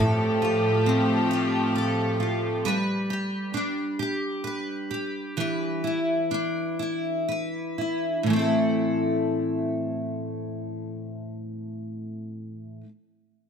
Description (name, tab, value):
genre	pop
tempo	39-45 BPM (dotted quarters)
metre	6/8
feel	straight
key	A minor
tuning	A4 = 440 Hz
part	picked steel-string acoustic guitar	accompaniment	0.0-12.9 s	A2 to B4	-25 LUFS	equal	double-tracked left and right
part	rich studio string section	sustained chords	0.0-2.6 s	A2 to G4	-27 LUFS	equal	none
room	light reverb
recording	none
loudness	-24 LUFS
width	side -7 dB against mid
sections	0.0-8.3 A section; 8.3-11.3 B section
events	slowing down 2.6-8.3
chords	0.0 Fadd9/A; 2.6 G; 5.4 E5; 8.3 Am